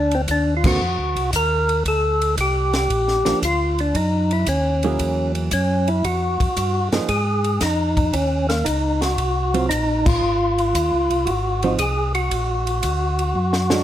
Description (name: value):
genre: soul jazz organ trio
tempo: 115 BPM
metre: 4/4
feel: swing 69% on 8ths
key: unclear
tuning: A4 = 436 Hz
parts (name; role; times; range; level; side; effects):
- percussive tonewheel organ; melody; 0.0-13.8 s; Bb3 to A#4; -20 LUFS; equal; slow rotary speaker, overdrive
- mellow tonewheel organ; bass; 0.0-13.8 s; Ab1 to Ab2; -23 LUFS; equal; slow rotary speaker
- compact cocktail drum kit; drums; 0.1-13.8 s; crash cymbal, hi-hat, kick drum, ride cymbal, snare drum; -26 LUFS; equal; none
- hollow-body jazz guitar; accompaniment; 0.7-13.8 s; D3 to Ab4; -23 LUFS; right 4 dB; none
room: light reverb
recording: none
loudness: -18 LUFS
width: side -11 dB against mid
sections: 0.0-13.8 A section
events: band accent 0.5, 10.0; drum fill 13.4-13.8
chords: 0.0 D7alt; 1.9 Gm7; 3.9 Gb9; 6.0 Fm9; 8.1 Gb6; 9.2 Ebm69; 10.2 Dbmaj9; 12.3 Bbaug